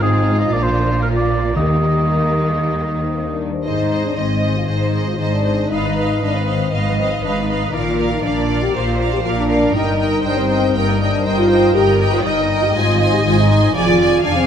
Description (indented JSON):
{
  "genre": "classical, dramatic, fast romantic movement for symphony orchestra",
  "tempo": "119 BPM",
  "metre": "4/4",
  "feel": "rubato",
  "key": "Eb major",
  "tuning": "A4 = 440 Hz",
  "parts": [
    { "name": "warm symphonic violin section", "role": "melody", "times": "0.0-14.5 s", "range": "Eb4 to Ab5", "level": "-27 LUFS", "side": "right 1 dB", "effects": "none" },
    { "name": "rich symphonic violin section", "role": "second line", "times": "0.0-14.5 s", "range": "Bb3 to F5", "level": "-24 LUFS", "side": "right 1 dB", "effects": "none" },
    { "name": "warm oboe", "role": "second line", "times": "0.0-3.4 s", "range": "Ab4 to Eb5", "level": "-21 LUFS", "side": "right 2 dB", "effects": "none" },
    { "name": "warm symphonic viola section", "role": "accompaniment", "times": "0.0-14.5 s", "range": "F3 to Eb5", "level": "-26 LUFS", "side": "equal", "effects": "none" },
    { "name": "dark French horn section", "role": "sustained chords", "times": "0.0-14.5 s", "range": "Bb3 to C5", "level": "-20 LUFS", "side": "left 1 dB", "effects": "none" },
    { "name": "concert harp", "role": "arpeggios", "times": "0.0-14.5 s", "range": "F2 to C5", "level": "-24 LUFS", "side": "left 7 dB", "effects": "none" },
    { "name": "rich symphonic double bass section", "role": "bass", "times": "0.0-14.5 s", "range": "F1 to Eb2", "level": "-22 LUFS", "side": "right 1 dB", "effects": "none" },
    { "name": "warm symphonic cello section", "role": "bass", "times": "0.0-14.5 s", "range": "F2 to Eb3", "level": "-22 LUFS", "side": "right 2 dB", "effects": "none" },
    { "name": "timpani", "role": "percussion", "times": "1.6-2.3 s", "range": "Eb3", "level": "-25 LUFS", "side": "left 1 dB", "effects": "none" }
  ],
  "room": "moderate recital hall reverb, RT60 1.7 s",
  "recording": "none",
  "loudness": "-14 LUFS",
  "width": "side -8 dB against mid",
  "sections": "0.0-3.7 A section; 3.7-14.5 A section",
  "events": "none",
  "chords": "0.0 Fm/Ab; 0.5 Bb; 1.6 Eb; 3.7 Ab; 5.7 Fm7b5/Ab; 7.7 Bb; 9.7 Eb/G; 12.7 Ab; 13.7 Ddim/F"
}